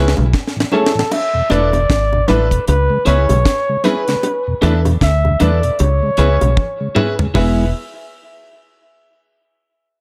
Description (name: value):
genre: roots reggae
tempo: 77 BPM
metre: 4/4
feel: swing 59% on 16ths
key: E mixolydian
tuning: A4 = 440 Hz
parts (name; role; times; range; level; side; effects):
- breathy flugelhorn; melody; 0.0-7.7 s; E4 to E5; -21 LUFS; equal; tape echo
- electric guitar at the edge of break-up; accompaniment; 0.0-7.6 s; D4 to C#5; -27 LUFS; equal; spring reverb, tape echo
- mellow tonewheel organ; accompaniment; 0.0-7.7 s; E2 to G#4; -24 LUFS; equal; chorus vibrato
- bright grand piano; stabs; 0.0-7.7 s; B3 to B4; -24 LUFS; equal; none
- deep dub fingered electric bass; bass; 0.0-7.7 s; E1 to E2; -17 LUFS; equal; none
- deep reggae drum kit; drums; 0.1-7.6 s; crash cymbal, hi-hat, kick drum, snare drum, toms; -22 LUFS; equal; none
- bongos; percussion; 0.2-7.7 s; none; -24 LUFS; equal; none
room: light reverb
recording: none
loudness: -15 LUFS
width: mono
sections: 0.0-1.1 A section; 1.1-7.3 B section; 7.3-10.0 C section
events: drum fill 0.0-1.1, 6.6-7.3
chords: 0.3 Amaj7; 1.1 E7sus4; 2.7 C#m7; 4.2 E7sus4; 5.8 C#m7; 7.3 E